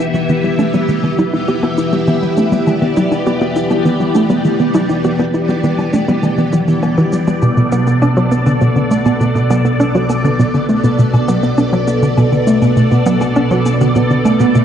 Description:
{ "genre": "ambient, sequencer-driven space music", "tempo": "101 BPM", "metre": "4/4", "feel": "straight", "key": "B minor", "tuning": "A4 = 440 Hz", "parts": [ { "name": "string machine, full ensemble", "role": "sustained chords", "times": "0.0-14.6 s", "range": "B2 to E5", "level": "-15 LUFS", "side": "left 1 dB", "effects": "phaser, ensemble chorus, shimmer reverb" }, { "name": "hollow square pluck", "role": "riff", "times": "0.0-14.6 s", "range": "B2 to G4", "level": "-16 LUFS", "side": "equal", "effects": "chorus, tape echo" }, { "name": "shaker and woodblock", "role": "percussion", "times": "0.0-14.6 s", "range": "none", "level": "-34 LUFS", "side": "left 3 dB", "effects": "tape echo" }, { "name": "soft round pluck", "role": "arpeggios", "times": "0.1-14.5 s", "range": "F#3 to F#4", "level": "-18 LUFS", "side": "moving between left 1 dB and right 5 dB", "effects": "chorus, auto-pan, tape echo, shimmer reverb" } ], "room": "wet plate reverb, RT60 2.3 s", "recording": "worn, warbling old tape, cassette tape, warbly pitch drift", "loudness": "-11 LUFS", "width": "side -9 dB against mid", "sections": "0.0-14.6 A section", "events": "fade-in on drum 0.0-14.6; filter sweep on synth arpeggio sound 0.0-14.6", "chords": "0.0 Em; 7.4 Bm7" }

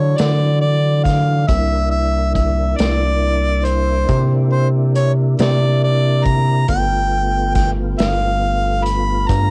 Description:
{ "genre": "slow blues", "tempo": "46 BPM (dotted quarters)", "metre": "12/8", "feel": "straight", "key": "unclear", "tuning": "A4 = 440 Hz", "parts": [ { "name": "clear harmonica", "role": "melody", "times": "0.0-9.5 s", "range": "C5 to B5", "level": "-22 LUFS", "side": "equal", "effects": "overdrive" }, { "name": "tonewheel organ", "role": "sustained chords", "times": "0.0-9.5 s", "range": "E3 to F4", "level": "-28 LUFS", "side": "equal", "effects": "slow rotary speaker, chorus vibrato, cassette tape" }, { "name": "rubbery square bass", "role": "bass", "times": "0.0-9.5 s", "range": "G1 to D3", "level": "-19 LUFS", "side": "equal", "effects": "none" }, { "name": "vintage drum kit", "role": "drums", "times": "0.2-9.5 s", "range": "hi-hat, kick drum, snare drum", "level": "-24 LUFS", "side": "equal", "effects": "cassette tape" } ], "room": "little or no reverb", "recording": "home recording on cassette", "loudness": "-17 LUFS", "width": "mono", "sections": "0.0-9.5 A section", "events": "none", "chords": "0.0 D; 1.5 C7; 6.7 G7" }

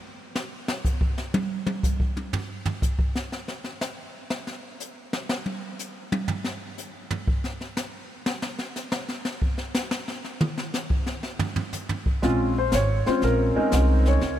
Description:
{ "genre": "jazz piano trio", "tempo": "121 BPM", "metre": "4/4", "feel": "swing 68% on 8ths", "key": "Bb minor", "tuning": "A4 = 440 Hz", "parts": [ { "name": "jazz brush drum kit", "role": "drums", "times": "0.4-14.4 s", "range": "brushed snare drum, hi-hat, kick drum, snare drum, toms", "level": "-27 LUFS", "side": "equal", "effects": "none" }, { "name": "warm concert grand piano", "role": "melody", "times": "12.2-14.4 s", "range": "Ab3 to Db5", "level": "-22 LUFS", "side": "equal", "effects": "wide subtle chorus, diffuse ambient delay" }, { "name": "upright bass", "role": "bass", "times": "12.2-14.4 s", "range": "Ab1 to Db2", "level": "-22 LUFS", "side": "equal", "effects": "none" } ], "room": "light reverb, small room ambience", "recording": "none", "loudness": "-24 LUFS", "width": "side -11 dB against mid", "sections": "0.0-12.2 A section; 12.2-14.4 B section", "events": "drum solo 0.0-12.2", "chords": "0.0 N.C.; 12.2 Bbm7" }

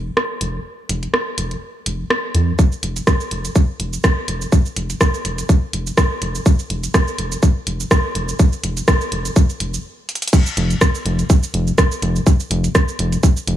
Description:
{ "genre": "minimal techno", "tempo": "124 BPM", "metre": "4/4", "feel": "swing 55% on 16ths", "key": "unclear", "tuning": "A4 = 438 Hz", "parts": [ { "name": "rubbery square bass", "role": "bass", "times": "0.0-13.6 s", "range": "F1 to F2", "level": "-20 LUFS", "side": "equal", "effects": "tube saturation, sidechain pumping" }, { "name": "garage drum kit", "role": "drums", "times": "0.2-13.6 s", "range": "crash cymbal, hi-hat, rim click, shaker", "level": "-21 LUFS", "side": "right 1 dB", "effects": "none" }, { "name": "electronic kick drum", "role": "drums", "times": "2.6-13.3 s", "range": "none", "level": "-13 LUFS", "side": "equal", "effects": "none" } ], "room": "light reverb", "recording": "none", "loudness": "-16 LUFS", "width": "side -12 dB against mid", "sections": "0.0-10.3 A section; 10.3-13.6 B section", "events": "build-up 0.0-10.3; stop 9.8-10.3; drum fill 10.1; drop 10.3-13.6", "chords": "none" }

